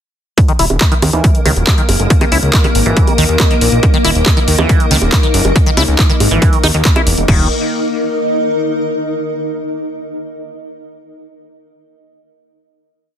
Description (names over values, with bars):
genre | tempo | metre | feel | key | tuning
psychedelic trance | 139 BPM | 4/4 | straight | unclear | A4 = 441 Hz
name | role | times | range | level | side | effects
swarming drone | sustained chords | 1.0-7.3 s | Bb3 to Bb4 | -20 LUFS | left 2 dB | built-in reverb, sidechain pumping
liquid acid bass | riff | 0.4-7.5 s | Eb3 to Fb4 | -19 LUFS | moving between left 4 dB and right 4 dB | chorus, auto-pan, sidechain pumping, tape echo
electronic kick drum | drums | 0.4-7.4 s | none | -12 LUFS | equal | overdrive
techno drum kit | drums | 0.4-7.4 s | bongos, crash cymbal, handclaps, hi-hat | -17 LUFS | right 1 dB | overdrive
granular cloud pad | texture | 1.4-9.0 s | Eb4 to Eb5 | -21 LUFS | left 1 dB | built-in reverb, sidechain pumping
fat analog bass | bass | 0.6-7.5 s | Eb1 to Eb2 | -14 LUFS | equal | none
vowel-sweep wobble bass | second line | 1.1-3.0 s | Gb3 to Bb3 | -28 LUFS | right 4 dB | none
room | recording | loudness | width
little or no reverb | dense, heavily limited modern master | -10 LUFS | side -9 dB against mid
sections
0.4-7.3 groove; 7.3-9.0 final chord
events
none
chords
0.4 Eb5